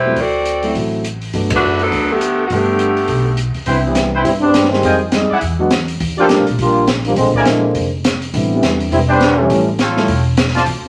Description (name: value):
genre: jazz, big band swing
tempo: 206 BPM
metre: 4/4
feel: swing 59% on 8ths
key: G major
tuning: A4 = 440 Hz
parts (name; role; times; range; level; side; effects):
- mellow saxophone section; melody; 0.0-3.4 s; D3 to D5; -18 LUFS; equal; none
- upright bass; bass; 0.0-10.9 s; E1 to Bb2; -23 LUFS; equal; none
- warm grand piano; accompaniment; 0.1-10.1 s; D3 to Ab4; -23 LUFS; equal; none
- open jazz drum kit; drums; 0.2-10.8 s; hi-hat, kick drum, ride cymbal, snare drum; -23 LUFS; equal; none
- mellow trumpet section; stabs; 3.7-10.6 s; D4 to A5; -21 LUFS; equal; none
- mellow trombone section; second line; 3.9-9.7 s; C3 to G4; -17 LUFS; equal; none
room: wet studio reverb, RT60 0.8 s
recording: vinyl crackle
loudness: -15 LUFS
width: mono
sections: 0.0-3.7 A section; 3.7-10.9 B section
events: band accent 1.5; break 3.4; trombone section solo 3.7-10.9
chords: 0.2 D9; 1.3 Gmaj9; 3.7 Cmaj7; 4.8 Fm9; 5.4 E9; 6.0 Ebmaj9#11; 7.2 Bb7#11; 8.3 Am11; 9.5 A7b13